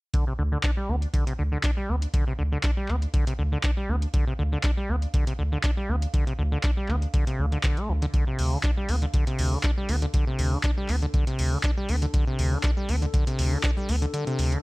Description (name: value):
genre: acid house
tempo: 120 BPM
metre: 4/4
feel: swing 54% on 16ths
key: D minor pentatonic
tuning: A4 = 440 Hz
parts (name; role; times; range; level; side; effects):
- acid bass, saw; riff; 0.1-14.6 s; C3 to D4; -30 LUFS; equal; cassette tape, analog delay
- booming analog drum machine; drums; 0.1-14.6 s; handclaps, hi-hat; -32 LUFS; equal; none
- electronic kick drum; drums; 0.1-13.7 s; none; -25 LUFS; equal; none
- warbly tape-like pad; texture; 0.1-14.6 s; D4 to A5; -42 LUFS; left 3 dB; chorus, built-in reverb, sidechain pumping
- round analog bass; bass; 0.4-14.6 s; D2; -25 LUFS; equal; sidechain pumping
room: little or no reverb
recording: dark, warm production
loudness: -23 LUFS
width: side -23 dB against mid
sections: 0.1-14.6 A section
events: fade-in on ambient pad 0.1-14.6; kick drops out 14.1-14.6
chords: 0.1 Dm